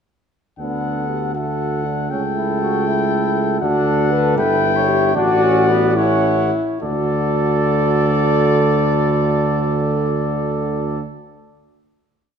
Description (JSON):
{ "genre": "classical, brass quintet", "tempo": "69-80 BPM (dotted quarters)", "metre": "6/8", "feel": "straight", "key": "D major", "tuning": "A4 = 439 Hz", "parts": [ { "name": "warm trumpet", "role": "melody", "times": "0.6-11.0 s", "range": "D5 to G5", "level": "-22 LUFS", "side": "left 10 dB", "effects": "none" }, { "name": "clear flugelhorn", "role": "second line", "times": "0.6-11.0 s", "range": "A4 to D5", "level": "-25 LUFS", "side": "right 7 dB", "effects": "none" }, { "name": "clear trombone", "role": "accompaniment", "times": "0.6-11.0 s", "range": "D3 to F#4", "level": "-25 LUFS", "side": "right 4 dB", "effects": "none" }, { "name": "mellow French horn", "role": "accompaniment", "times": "0.6-11.0 s", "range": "A3 to B4", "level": "-22 LUFS", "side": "left 4 dB", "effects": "none" }, { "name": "warm tuba", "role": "bass", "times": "0.6-11.0 s", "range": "G1 to D2", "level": "-20 LUFS", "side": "right 4 dB", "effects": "none" } ], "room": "wet recital hall reverb, RT60 1.6 s", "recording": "none", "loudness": "-15 LUFS", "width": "side -7 dB against mid", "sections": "0.6-6.8 A section; 6.8-10.2 final chord", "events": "slowing down 2.9-6.8", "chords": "0.6 D; 2.1 A7/C#; 3.6 D; 4.4 G; 5.2 D/A; 6.0 A6; 6.8 D" }